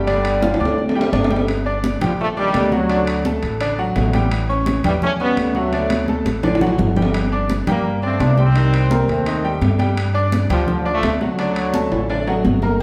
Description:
latin, salsa; 170 BPM; 4/4; straight; G minor; A4 = 440 Hz
bright trombone section; melody; 0.0-12.4 s; D3 to D4; -24 LUFS; equal
bright concert grand piano; accompaniment; 0.0-12.8 s; D3 to D6; -25 LUFS; equal
upright bass; bass; 0.0-12.8 s; G1 to G2; -23 LUFS; equal
congas; percussion; 0.1-12.8 s; -26 LUFS; equal
timbales and agogo bells; percussion; 0.1-12.8 s; -27 LUFS; equal
wet large studio reverb, RT60 1.2 s; heard from further back in the room; -18 LUFS; mono
0.0-1.5 A section; 1.5-12.8 B section
drum fill 0.4-1.5, 5.7-7.1, 11.9-12.8
0.1 G5; 1.5 Gm; 2.9 D; 4.3 A7; 5.7 D; 7.1 Gm; 8.6 Cm7; 10.0 G5; 11.4 D

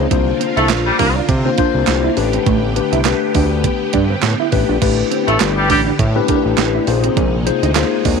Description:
early-eighties boogie funk; 102 BPM; 4/4; swing 56% on 16ths; A4 = 440 Hz
tine electric piano; accompaniment; 0.0-8.2 s; A3 to C5; -18 LUFS; left 13 dB
string machine, violins; sustained chords; 0.0-8.2 s; C3 to G4; -23 LUFS; right 1 dB; phaser, ensemble chorus
mellow electric guitar; riff; 0.0-8.2 s; A3 to E4; -22 LUFS; right 15 dB; analog chorus
fat analog bass; bass; 0.0-8.2 s; G1 to C3; -18 LUFS; equal
crisp 8-bit digital drum machine; drums; 0.1-8.2 s; crash cymbal, handclaps, hi-hat, kick drum, snare drum; -19 LUFS; right 6 dB
clear horn section; second line; 0.6-1.1, 5.3-5.8 s; G3 to Bb4; -17 LUFS; left 1 dB
light reverb; 1960s-style stereo with parts hard left and right; -13 LUFS; side -5 dB against mid
0.0-4.8 A section; 4.8-8.2 A section
0.1 C9sus4; 2.2 A9sus4; 6.9 Bb9sus4

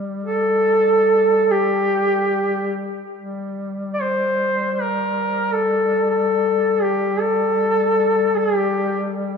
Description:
caucasian folk, Caucasian lament; free time; G minor; A4 = 442 Hz
mellow duduk; drone; 0.0-9.4 s; G3; -26 LUFS; left 2 dB
warm duduk; melody; 0.2-9.1 s; G4 to D5; -17 LUFS; equal
wet church reverb, RT60 3.2 s; minimal, uncompressed stereo recording; -17 LUFS; side -6 dB against mid
0.0-3.1 A section; 3.1-9.4 A section

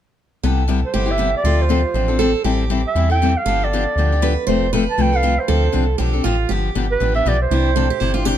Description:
acoustic string swing (jazz manouche); 238 BPM; 4/4; swing 55% on 8ths; C major; A4 = 440 Hz
picked steel-string acoustic guitar; second line; 0.4-8.4 s; E4 to C5; -24 LUFS; right 8 dB
picked steel-string acoustic guitar; accompaniment; 0.4-8.4 s; C3 to A4; -21 LUFS; left 7 dB
metallic FM bass; bass; 0.4-8.4 s; F1 to E2; -19 LUFS; equal
breathy clarinet; melody; 0.9-8.2 s; B4 to A5; -21 LUFS; right 4 dB; plate reverb, tape echo
light reverb; dark, warm production; -15 LUFS; side -10 dB against mid
0.4-8.4 A section
0.4 Cmaj7; 1.4 Dm7; 2.5 Am7; 3.5 G7; 4.5 F; 5.5 Dm7; 6.5 G7; 7.5 Cadd9

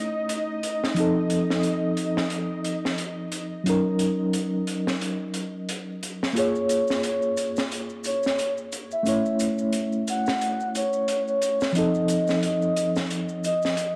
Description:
trip hop; 89 BPM; 4/4; swing 55% on 16ths; A4 = 440 Hz
mellow reed electric piano; accompaniment; 0.0-14.0 s; F3 to C#5; -28 LUFS; equal; tremolo
string machine, cellos; sustained chords; 0.0-6.4 s; Eb5; -34 LUFS; equal; ensemble chorus, vintage 12-bit sampler grit
crunchy breakbeat drum kit; drums; 0.3-13.9 s; hi-hat, snare drum; -33 LUFS; equal; high-pass filter on hats, high-pass filter on snare, high-pass filter on room
pure breathy sine lead; melody; 6.4-13.9 s; Db5 to Gb5; -28 LUFS; equal; chorus, dub echo
maracas; percussion; 6.4-13.9 s; -42 LUFS; equal
light reverb, small room ambience; dark, warm production, vinyl crackle; -25 LUFS; mono
0.0-14.0 A section
0.0 A; 1.0 F7; 3.7 Ebm7; 6.4 Bbm7; 9.1 A; 11.8 F7

